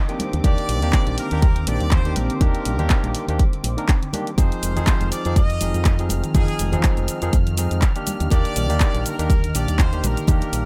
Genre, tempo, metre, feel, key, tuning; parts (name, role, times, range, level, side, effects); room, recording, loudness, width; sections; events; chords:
nu-disco, nu disco; 122 BPM; 4/4; swing 55% on 16ths; A4 = 438 Hz
brilliant trumpet section; melody; 0.0-10.7 s; Ab4 to Eb5; -33 LUFS; equal; digital delay
lush unison pad; sustained chords; 0.0-10.7 s; Eb3 to F6; -35 LUFS; equal; chorus, phaser, sidechain pumping
soft round pluck; arpeggios; 0.0-10.6 s; D3 to Eb4; -37 LUFS; equal
barky tine electric piano; accompaniment; 0.1-10.6 s; Eb3 to Bb4; -30 LUFS; equal; delay
pop drum kit; drums; 0.1-10.6 s; handclaps, hi-hat, shaker; -30 LUFS; equal
congas; percussion; 0.2-10.5 s; -33 LUFS; equal
fingered electric bass with an envelope filter; bass; 0.3-10.7 s; F1 to F2; -26 LUFS; equal; tube saturation
electronic kick drum; drums; 0.4-10.4 s; -20 LUFS; equal
little or no reverb; -20 LUFS; mono
0.0-10.7 A section
0.2 Ebmaj7; 4.4 Fm7; 8.1 Ebmaj7